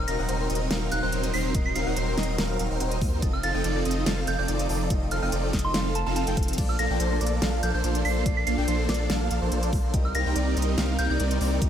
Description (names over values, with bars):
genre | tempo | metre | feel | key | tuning
future bass | 143 BPM | 4/4 | half-time | Bb major | A4 = 440 Hz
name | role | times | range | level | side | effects
soft synth bell | melody | 0.0-11.2 s | A5 to C7 | -32 LUFS | right 1 dB | chorus, phaser, sidechain pumping, digital delay
rich chamber string section | sustained chords | 0.0-11.7 s | Bb2 to F4 | -39 LUFS | left 1 dB | none
concert harp | arpeggios | 0.0-11.7 s | G4 to Gb5 | -36 LUFS | left 4 dB | sidechain pumping, dub echo
saturated sub bass | bass | 0.0-11.7 s | Eb1 to Eb2 | -28 LUFS | equal | sidechain pumping
airy dreamy lead | arpeggios | 0.1-11.7 s | C5 to G5 | -37 LUFS | equal | chorus, sidechain pumping, dub echo
supersaw chords | riff | 0.1-11.7 s | F3 to G5 | -29 LUFS | right 1 dB | phaser, sidechain pumping
pop drum kit | drums | 0.1-11.7 s | crash cymbal, hi-hat, snare drum | -31 LUFS | equal | studio reverb
electronic kick drum | drums | 1.5-11.7 s | none | -26 LUFS | equal | studio reverb
room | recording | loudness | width
little or no reverb | none | -23 LUFS | side -9 dB against mid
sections
0.0-11.7 A section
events
drum fill 6.4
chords
0.0 Ebm6; 3.2 F7; 6.6 Bbmaj7; 9.9 Cm7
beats
0.29 0.71 1.13 | 1.55 1.97 2.38 2.81 | 3.22 3.64 4.06 4.48 | 4.90 5.32 5.74 6.16 | 6.58 7.00 7.42 7.84 | 8.26 8.68 9.10 9.52 | 9.94 10.36 10.78 11.20 | 11.62